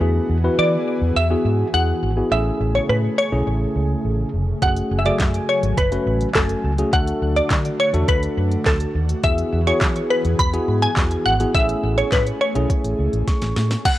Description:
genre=dance-pop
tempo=104 BPM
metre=4/4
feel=straight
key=unclear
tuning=A4 = 442 Hz
part: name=glassy wavetable pluck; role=melody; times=0.0-14.0 s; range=A4 to B5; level=-22 LUFS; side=equal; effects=chorus, analog delay
part: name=tine electric piano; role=accompaniment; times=0.0-13.8 s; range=C#3 to C#6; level=-24 LUFS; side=left 1 dB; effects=sidechain pumping
part: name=airy breathy pad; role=sustained chords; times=0.0-14.0 s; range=B2 to G#5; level=-29 LUFS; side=equal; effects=chorus, sidechain pumping
part: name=vintage muted fingered electric bass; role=bass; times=0.0-13.7 s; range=E#1 to E3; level=-21 LUFS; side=equal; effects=sidechain pumping
part: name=smooth R&B drum kit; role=drums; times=4.6-14.0 s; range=crash cymbal, handclaps, hi-hat, kick drum, snare drum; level=-21 LUFS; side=equal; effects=none
room=light reverb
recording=dry, gritty hardware recording, cassette tape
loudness=-17 LUFS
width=side -14 dB against mid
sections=0.0-13.9 A section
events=tine electric piano fill 13.0-13.9; drum fill 13.3-13.9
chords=0.0 Eadd9; 2.3 Amaj7; 4.6 F#madd9; 6.9 D; 9.2 Eadd9; 11.5 Amaj7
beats=| 0.01 0.58 1.16 1.74 | 2.31 2.89 3.47 4.04 | 4.62 5.20 5.78 6.35 | 6.93 7.51 8.08 8.66 | 9.24 9.81 10.39 10.97 | 11.54 12.12 12.70 13.28 | 13.85

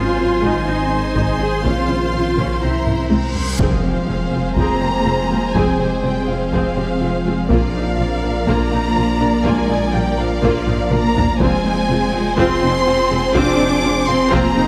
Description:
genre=cinematic, hybrid orchestral and electronic film score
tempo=123 BPM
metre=4/4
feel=straight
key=F dorian from 3.6 s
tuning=A4 = 440 Hz
part: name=warm symphonic violin section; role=second line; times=0.0-14.7 s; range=Ab4 to C6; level=-27 LUFS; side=equal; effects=none
part: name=clear symphonic viola section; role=accompaniment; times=0.0-14.7 s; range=Bb3 to C5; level=-27 LUFS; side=equal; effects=none
part: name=ethereal airy pad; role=sustained chords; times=0.0-14.7 s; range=Eb3 to D5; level=-28 LUFS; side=equal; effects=none
part: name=soft round pluck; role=arpeggios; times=0.0-14.7 s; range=C3 to Bb4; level=-29 LUFS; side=equal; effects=none
part: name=dark symphonic cello section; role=bass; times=0.0-14.7 s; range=F3 to Ab4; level=-24 LUFS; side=equal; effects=none
part: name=punchy sub bass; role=bass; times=0.0-14.7 s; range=F1 to C2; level=-28 LUFS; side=equal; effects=none
part: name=warm symphonic double bass section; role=bass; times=0.0-14.7 s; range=F1 to C2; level=-27 LUFS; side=equal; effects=none
part: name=taiko ensemble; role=drums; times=0.4-14.7 s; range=none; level=-25 LUFS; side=equal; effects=none
part: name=reverse cymbal and impact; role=sound effects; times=3.2-5.5 s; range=none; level=-28 LUFS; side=equal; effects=none
part: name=warm symphonic violin section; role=melody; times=3.6-14.7 s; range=F5 to D6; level=-26 LUFS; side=equal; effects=none
part: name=warm French horn section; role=sustained chords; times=3.6-14.7 s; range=F3 to D4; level=-29 LUFS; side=equal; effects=none
room=wet scoring stage reverb, RT60 1.8 s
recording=none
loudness=-17 LUFS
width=mono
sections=0.0-3.6 A section; 3.6-14.7 B section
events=drum fill 2.9-3.6, 10.7-11.4; reverse cymbal 3.2-3.6; impact 3.6-5.6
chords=0.0 Ab; 1.6 Bbmadd9; 2.6 C7; 3.6 Fm; 7.5 Bb; 11.4 Fm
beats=0.19 0.67 1.16 | 1.65 2.14 2.62 3.11 | 3.60 4.09 4.58 5.06 | 5.55 6.04 6.53 7.02 | 7.50 7.99 8.48 8.97 | 9.46 9.94 10.43 10.92 | 11.41 11.89 12.38 12.87 | 13.36 13.85 14.33

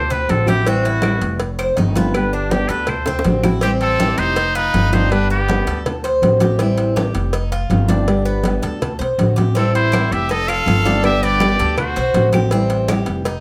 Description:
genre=latin, Cuban son and guajira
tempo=162 BPM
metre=4/4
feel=straight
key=unclear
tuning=A4 = 440 Hz
part: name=trumpet with straight mute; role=melody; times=0.0-5.8, 9.6-12.3 s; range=D4 to F5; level=-23 LUFS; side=equal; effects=plate reverb
part: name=Cuban tres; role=arpeggios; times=0.0-13.4 s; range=B3 to C5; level=-25 LUFS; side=equal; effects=none
part: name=upright bass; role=bass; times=0.0-13.4 s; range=F1 to D2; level=-23 LUFS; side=equal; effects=none
part: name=congas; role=percussion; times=0.1-13.4 s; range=none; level=-24 LUFS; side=equal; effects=none
part: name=cowbell and bongos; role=percussion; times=0.1-13.4 s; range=none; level=-30 LUFS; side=equal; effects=none
part: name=nylon-string guitar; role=accompaniment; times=0.3-13.3 s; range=D3 to G4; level=-24 LUFS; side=equal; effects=none
part: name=claves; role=percussion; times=0.5-3.6, 9.9-13.1 s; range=none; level=-32 LUFS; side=equal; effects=none
part: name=brilliant trumpet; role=second line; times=3.6-5.8, 9.6-12.3 s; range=B3 to A4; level=-28 LUFS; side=equal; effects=none
room=light reverb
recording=none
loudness=-17 LUFS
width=mono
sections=0.0-3.6 A section; 3.6-13.4 B section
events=muted trumpet solo 0.0-3.6; drum fill 3.1-3.6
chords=0.0 D7; 0.7 Am7; 1.4 F7; 2.1 G; 2.9 D7; 3.6 Am7; 4.4 F7; 5.1 G; 5.9 D7; 6.6 Am7; 7.3 F7; 8.1 G; 8.8 D7; 9.6 Am7; 10.3 F7; 11.0 G; 11.8 D7; 12.5 Am7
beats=0.29 | 0.66 1.03 1.40 1.77 | 2.14 2.51 2.88 3.26 | 3.63 4.00 4.37 4.74 | 5.11 5.48 5.85 6.22 | 6.59 6.96 7.33 7.70 | 8.07 8.44 8.81 9.19 | 9.55 9.93 10.30 10.67 | 11.04 11.41 11.78 12.15 | 12.52 12.89 13.26

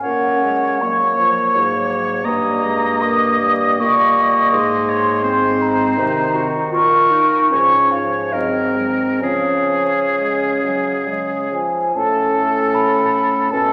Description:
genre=classical, slow romantic movement for wind quintet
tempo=62-86 BPM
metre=3/4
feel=rubato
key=Db major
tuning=A4 = 439 Hz
part: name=baroque flute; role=melody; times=0.0-13.7 s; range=Db5 to Eb6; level=-20 LUFS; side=equal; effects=none
part: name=clear oboe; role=second line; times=0.0-13.7 s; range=Ab4 to Eb5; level=-24 LUFS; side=equal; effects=none
part: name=clear French horn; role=accompaniment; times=0.0-13.7 s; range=Eb3 to Bb3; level=-27 LUFS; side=equal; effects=none
part: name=clear clarinet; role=accompaniment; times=0.0-13.7 s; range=Bb3 to Gb4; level=-26 LUFS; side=equal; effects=none
part: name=mellow bassoon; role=bass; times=0.0-13.7 s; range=G2 to Db3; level=-26 LUFS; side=equal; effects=none
room=wet scoring stage reverb, RT60 1.7 s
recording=vinyl crackle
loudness=-17 LUFS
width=mono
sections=0.0-12.0 A section; 12.0-13.7 B section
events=none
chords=0.0 Gb/Bb; 2.3 Gdim; 4.5 Ab7; 6.7 Bbm; 7.5 Db/Ab; 8.3 Ab9; 9.2 Db; 12.0 A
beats=| 0.03 0.82 1.54 | 2.25 3.04 3.79 | 4.52 5.24 5.97 | 6.73 7.50 8.32 | 9.21 10.18 11.08 | 11.96 12.75 13.52

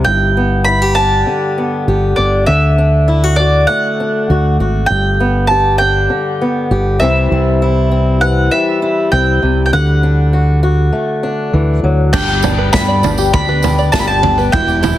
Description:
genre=indie folk with a building arrangement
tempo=99 BPM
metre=4/4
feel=straight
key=G major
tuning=A4 = 438 Hz
part: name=mandolin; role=melody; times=0.0-15.0 s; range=D5 to B5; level=-16 LUFS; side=right 1 dB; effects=none
part: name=fingerpicked swing-style acoustic guitar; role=accompaniment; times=0.0-12.1 s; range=G2 to G4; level=-16 LUFS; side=left 2 dB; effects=none
part: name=fingered electric bass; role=bass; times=0.0-15.0 s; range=E1 to G2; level=-14 LUFS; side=equal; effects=none
part: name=picked twelve-string acoustic guitar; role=accompaniment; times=12.1-15.0 s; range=E2 to G4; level=-19 LUFS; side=left 6 dB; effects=none
part: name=open-back banjo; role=arpeggios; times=12.1-15.0 s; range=D4 to D5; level=-20 LUFS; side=right 5 dB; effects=none
part: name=natural country drum kit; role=drums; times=12.1-15.0 s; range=crash cymbal, kick drum, snare drum, toms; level=-16 LUFS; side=right 1 dB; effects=none
part: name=tambourine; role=percussion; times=12.3-15.0 s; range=none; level=-29 LUFS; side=right 9 dB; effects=none
room=light reverb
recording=heavily compressed radio sound, multiband compression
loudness=-11 LUFS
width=side -13 dB against mid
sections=0.0-12.1 A section; 12.1-15.0 B section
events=none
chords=0.1 Gadd9; 2.5 D; 4.9 G; 7.0 C; 9.7 D; 12.1 G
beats=| 0.06 0.67 1.27 1.88 | 2.48 3.08 3.69 4.29 | 4.90 5.50 6.11 6.71 | 7.32 7.92 8.52 9.12 | 9.73 10.33 10.93 11.53 | 12.13 12.73 13.33 13.93 | 14.53

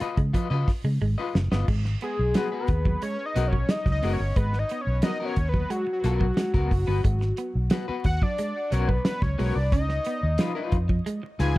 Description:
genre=funk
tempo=90 BPM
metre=4/4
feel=straight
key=G# dorian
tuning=A4 = 440 Hz
part: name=electric guitar at the edge of break-up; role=accompaniment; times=0.0-11.6 s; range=B3 to D#5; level=-31 LUFS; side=left 5 dB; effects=tremolo
part: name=electric guitar at the edge of break-up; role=riff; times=0.0-11.6 s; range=E#3 to C#4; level=-33 LUFS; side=right 4 dB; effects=none
part: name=vintage muted fingered electric bass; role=bass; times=0.0-11.6 s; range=F#1 to C#3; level=-25 LUFS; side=equal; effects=none
part: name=damped 70s drum kit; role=drums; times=0.0-11.6 s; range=crash cymbal, hi-hat, kick drum, snare drum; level=-26 LUFS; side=equal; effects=none
part: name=fat analog lead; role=melody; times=2.0-11.6 s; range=F#4 to G#5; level=-30 LUFS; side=left 1 dB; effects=chorus, tape echo
room=light reverb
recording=dark, warm production, vinyl crackle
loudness=-23 LUFS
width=side -18 dB against mid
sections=0.0-1.7 A section; 1.7-11.6 B section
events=drum fill 1.0-1.7; analog synth lead solo 1.7-11.6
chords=0.0 C#9; 1.7 G#m9; 9.7 C#9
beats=0.34 1.01 | 1.68 2.35 3.02 3.70 | 4.37 5.04 5.71 6.38 | 7.05 7.72 8.39 9.05 | 9.72 10.39 11.06

